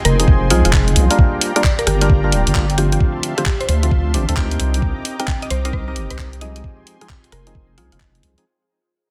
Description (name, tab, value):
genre	UK garage, two-step garage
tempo	132 BPM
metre	4/4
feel	swing 64% on 16ths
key	unclear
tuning	A4 = 442 Hz
part	warm analog pad	sustained chords	0.0-8.4 s	D5 to D6	-33 LUFS	equal	chorus, sidechain pumping
part	warbly tape-like pad	texture	0.0-8.5 s	C4 to Bb5	-33 LUFS	equal	chorus, built-in reverb, phaser, sidechain pumping
part	mallet-like synth pluck	melody	0.1-8.0 s	F4 to G5	-27 LUFS	equal	chorus, dub echo
part	deep soft wobble bass	bass	0.1-8.3 s	D1 to D2	-20 LUFS	equal	chorus
part	garage drum kit	drums	0.1-8.4 s	handclaps, hi-hat, rim click	-24 LUFS	equal	small room ambience, soft clipping on snare
part	percussive organ stab	stabs	0.2-8.4 s	D3 to G5	-25 LUFS	equal	chorus, dub echo
part	electronic kick drum	drums	0.3-8.1 s	none	-19 LUFS	equal	small room ambience
room	light reverb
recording	dense, heavily limited modern master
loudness	-16 LUFS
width	mono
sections	0.0-8.5 A section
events	drop 0.0-8.5; fade-out 1.2-8.5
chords	0.0 Fm7; 1.2 Gm7; 3.0 Dm7; 4.6 Cm7; 6.6 Fm7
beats	0.28 0.73 | 1.19 1.64 2.10 2.55 | 3.00 3.46 3.91 4.37 | 4.82 5.28 5.73 6.19 | 6.64 7.10 7.55 8.01